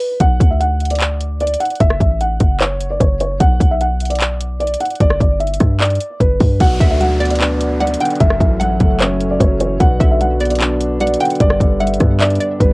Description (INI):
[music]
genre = hip hop, trap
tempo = 150 BPM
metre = 4/4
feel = half-time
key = B minor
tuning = A4 = 440 Hz
[part]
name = felt-muted upright piano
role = melody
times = 0.0-12.7 s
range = B4 to F#5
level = -19 LUFS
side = equal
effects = tape echo
[part]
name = trap drum kit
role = drums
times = 0.0-12.7 s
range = handclaps, hi-hat, kick drum, rim click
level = -15 LUFS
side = equal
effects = cassette tape
[part]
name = hard-hitting 808-style bass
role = bass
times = 0.2-12.7 s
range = F#1 to G2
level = -18 LUFS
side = equal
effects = none
[part]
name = dark concert grand piano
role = accompaniment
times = 6.6-12.7 s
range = F#2 to D4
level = -20 LUFS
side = equal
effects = none
[part]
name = dark French horn section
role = sustained chords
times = 6.6-12.7 s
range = F#3 to E5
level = -25 LUFS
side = equal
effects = none
[part]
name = downlifter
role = sound effects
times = 6.6-9.8 s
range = none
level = -32 LUFS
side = equal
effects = none
[part]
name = hollow square pluck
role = second line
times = 6.8-12.7 s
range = D5 to G5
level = -24 LUFS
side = right 2 dB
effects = chorus
[sound]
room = little or no reverb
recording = home recording on cassette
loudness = -12 LUFS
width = side -23 dB against mid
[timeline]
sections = 0.0-6.6 A section; 6.6-12.7 B section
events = break 0.0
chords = 0.2 Bm; 1.8 F#m; 3.4 Bm; 5.0 G; 6.6 Bm; 8.2 F#m7; 9.8 Bm; 11.4 G